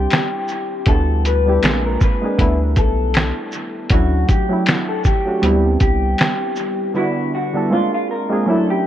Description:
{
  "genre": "lo-fi hip hop",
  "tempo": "79 BPM",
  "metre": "4/4",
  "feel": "swing 56% on 16ths",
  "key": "D major",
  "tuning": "A4 = 438 Hz",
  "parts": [
    { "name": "electric guitar through a small old amp", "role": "melody", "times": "0.0-8.9 s", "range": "E4 to B4", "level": "-22 LUFS", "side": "left 2 dB", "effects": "wide subtle chorus, low-pass filter, dub echo" },
    { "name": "warm analog keys", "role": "accompaniment", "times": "0.0-8.9 s", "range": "D3 to A4", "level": "-20 LUFS", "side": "right 1 dB", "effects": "chorus, cassette tape, low-pass filter" },
    { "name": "round analog bass", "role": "bass", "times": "0.0-6.1 s", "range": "Bb1 to D2", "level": "-18 LUFS", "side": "equal", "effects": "none" },
    { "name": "lo-fi sampler-style drum kit", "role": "drums", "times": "0.1-6.8 s", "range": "finger snaps, hi-hat, kick drum, shaker, snare drum", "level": "-18 LUFS", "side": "equal", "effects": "dub echo" },
    { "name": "finger snaps", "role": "percussion", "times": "0.1-6.4 s", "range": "none", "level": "barely audible", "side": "none", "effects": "none" }
  ],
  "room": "light reverb, digital ambience",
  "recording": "echo-heavy mix, cassette tape, nothing above 10.9 kHz",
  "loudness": "-15 LUFS",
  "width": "side -11 dB against mid",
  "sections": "0.0-8.9 A section",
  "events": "none",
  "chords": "0.0 C; 0.9 Em7/D; 1.6 Bb9; 2.4 A9sus4; 3.9 Dmaj7; 5.4 Cmaj7; 6.9 Em7/D; 7.7 Bb9"
}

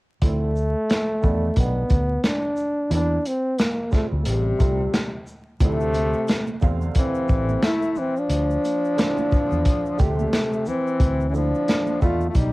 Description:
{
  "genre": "hip hop, jazz-hop",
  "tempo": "89 BPM",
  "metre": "4/4",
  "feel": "swing 57% on 16ths",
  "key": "D minor",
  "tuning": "A4 = 438 Hz",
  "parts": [
    { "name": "breathy trombone", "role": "melody", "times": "0.2-12.5 s", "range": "G3 to F4", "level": "-24 LUFS", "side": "equal", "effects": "none" },
    { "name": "warm upright piano", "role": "accompaniment", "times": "0.2-12.3 s", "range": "B#2 to F5", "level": "-31 LUFS", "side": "right 5 dB", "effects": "cassette tape" },
    { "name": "fretless electric bass", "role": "bass", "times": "0.2-12.5 s", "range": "A1 to E2", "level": "-23 LUFS", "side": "equal", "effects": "ensemble chorus" },
    { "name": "crunchy breakbeat drum kit", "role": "drums", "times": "0.2-12.5 s", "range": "hi-hat, kick drum, shaker, snare drum", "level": "-22 LUFS", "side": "equal", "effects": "cassette tape" },
    { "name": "breathy tenor saxophone", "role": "second line", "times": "4.3-12.5 s", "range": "B#2 to A3", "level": "-29 LUFS", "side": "left 5 dB", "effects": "cassette tape" },
    { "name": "tube shaker and congas", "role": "percussion", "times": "5.6-12.5 s", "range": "none", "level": "-37 LUFS", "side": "right 6 dB", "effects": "none" }
  ],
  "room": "light reverb",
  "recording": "home recording on cassette, vinyl crackle",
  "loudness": "-19 LUFS",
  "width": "side -20 dB against mid",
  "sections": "0.2-11.0 A section; 11.0-12.5 A section",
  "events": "none",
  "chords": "0.2 Dm9; 1.6 B7alt; 2.9 Em7b5; 4.3 Am7b13; 5.6 Dm9"
}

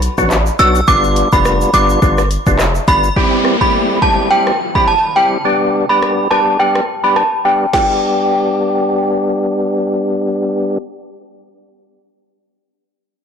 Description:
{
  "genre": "dancehall",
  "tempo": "105 BPM",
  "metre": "4/4",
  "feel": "swing 56% on 16ths",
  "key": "G major",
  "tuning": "A4 = 441 Hz",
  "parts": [
    { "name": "hard-hitting 808-style bass", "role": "bass", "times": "0.0-3.1 s", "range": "F1 to B1", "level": "-17 LUFS", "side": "equal", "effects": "none" },
    { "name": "deep house drum kit", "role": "drums", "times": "0.0-7.9 s", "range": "crash cymbal, handclaps, hi-hat, kick drum, rim click, shaker, snare drum", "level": "-19 LUFS", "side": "equal", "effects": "soft clipping on snare" },
    { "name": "tube shaker", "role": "percussion", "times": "0.0-3.2 s", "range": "none", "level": "-33 LUFS", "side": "right 12 dB", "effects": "none" },
    { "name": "percussive tonewheel organ", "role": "accompaniment", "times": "0.2-10.8 s", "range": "F#3 to G4", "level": "-16 LUFS", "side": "left 1 dB", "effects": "overdrive, fast rotary speaker, low-pass filter" },
    { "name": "synth chime", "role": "melody", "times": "0.6-9.4 s", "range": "G5 to E6", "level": "-15 LUFS", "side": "right 1 dB", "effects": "ensemble chorus, low-pass filter, tape echo" },
    { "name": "downlifter", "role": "sound effects", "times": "3.2-7.7 s", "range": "none", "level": "-21 LUFS", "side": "right 1 dB", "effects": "none" }
  ],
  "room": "light reverb, digital ambience",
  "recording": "blown-out, overdriven recording, overdrive",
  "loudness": "-11 LUFS",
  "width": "side -7 dB against mid",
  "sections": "0.0-3.2 A section; 3.2-7.7 B section; 7.7-10.0 C section",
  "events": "filter sweep 3.2-7.7",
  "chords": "0.0 Bm; 0.9 G7; 3.2 C; 5.4 G"
}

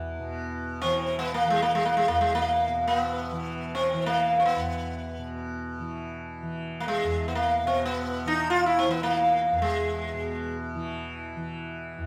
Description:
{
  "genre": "indian classical, Hindustani",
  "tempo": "free time",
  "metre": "none",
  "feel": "none",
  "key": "E major",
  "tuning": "A4 = 439 Hz",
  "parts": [
    { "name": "tanpura", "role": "drone", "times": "0.0-12.1 s", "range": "E2 to E3", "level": "-35 LUFS", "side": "equal", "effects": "none" },
    { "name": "sitar", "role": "melody", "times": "0.8-10.5 s", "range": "G#3 to F4", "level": "-27 LUFS", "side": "equal", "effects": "none" }
  ],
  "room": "wet stone room reverb, RT60 1.3 s",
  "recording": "band playing live in one room",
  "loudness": "-27 LUFS",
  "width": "mono",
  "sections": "0.2-12.1 A section",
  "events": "none",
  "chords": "none"
}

